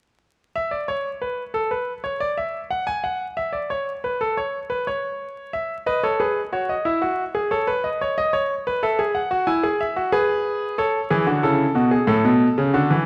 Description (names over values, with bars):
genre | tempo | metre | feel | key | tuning
classical, baroque-style 3-part fugue for grand piano | 91 BPM | 4/4 | straight | A major | A4 = 440 Hz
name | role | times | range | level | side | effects
bright grand piano | solo | 0.6-13.1 s | A2 to G#5 | -22 LUFS | equal | none
room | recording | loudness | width
moderate recital hall reverb, RT60 1.6 s | vinyl crackle | -23 LUFS | mono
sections
0.2-13.1 A section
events
none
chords
0.2 N.C.; 5.5 E; 6.9 A/E; 8.2 B7; 9.5 E; 10.8 A; 12.1 D/A